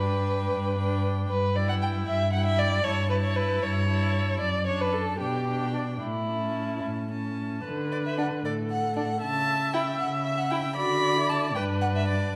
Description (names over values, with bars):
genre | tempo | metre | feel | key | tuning
quick classical-period movement for string quartet | 77 BPM (dotted quarters) | 6/8 | rubato | D major | A4 = 441 Hz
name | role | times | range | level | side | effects
rich violin | melody | 0.0-12.4 s | D5 to B5 | -35 LUFS | equal | none
rich violin | second line | 0.0-12.3 s | D4 to G5 | -32 LUFS | equal | none
rich viola | accompaniment | 0.0-12.4 s | C#4 to E5 | -35 LUFS | equal | none
warm cello | bass | 0.0-12.4 s | F#2 to D3 | -31 LUFS | equal | none
room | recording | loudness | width
moderate scoring stage reverb, RT60 1.8 s | none | -27 LUFS | mono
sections
0.0-7.7 A section; 7.7-12.4 B section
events
none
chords
0.0 G; 1.3 Em/G; 4.4 D/F#; 5.2 G/B; 6.0 A; 7.7 D5; 9.2 C#dim; 10.8 D; 11.6 G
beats
0.52 | 1.30 2.07 | 2.84 3.62 | 4.41 5.20 | 6.02 6.84 | 7.66 8.45 | 9.23 10.00 | 10.78 11.56